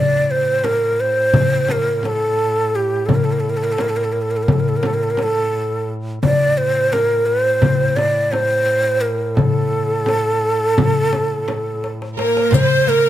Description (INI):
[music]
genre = Turkish makam ensemble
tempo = 172 BPM (eighths)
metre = 9/8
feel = straight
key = A makam kurdi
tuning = A4 = 440 Hz
[part]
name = breathy ney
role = melody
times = 0.0-13.1 s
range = G4 to D5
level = -17 LUFS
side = right 1 dB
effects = none
[part]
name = mellow duduk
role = drone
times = 0.0-12.6 s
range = A2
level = -26 LUFS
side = equal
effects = none
[part]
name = darbuka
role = percussion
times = 0.6-12.7 s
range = none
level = -20 LUFS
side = left 4 dB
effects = none
[part]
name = frame drum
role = percussion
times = 0.6-12.7 s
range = none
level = -23 LUFS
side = right 2 dB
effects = none
[part]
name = clear studio violin section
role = second line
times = 12.2-13.1 s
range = Bb4 to C5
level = -23 LUFS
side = equal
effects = none
[part]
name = oud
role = second line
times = 12.2-13.1 s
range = Bb3 to C4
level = -24 LUFS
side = right 10 dB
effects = none
[part]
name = riq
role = percussion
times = 12.5-12.7 s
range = none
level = -31 LUFS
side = left 9 dB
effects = none
[sound]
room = moderate recital hall reverb, RT60 1.5 s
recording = close, detailed microphones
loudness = -15 LUFS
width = side -12 dB against mid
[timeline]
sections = 0.0-12.5 A section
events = drum fill 11.8-12.5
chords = none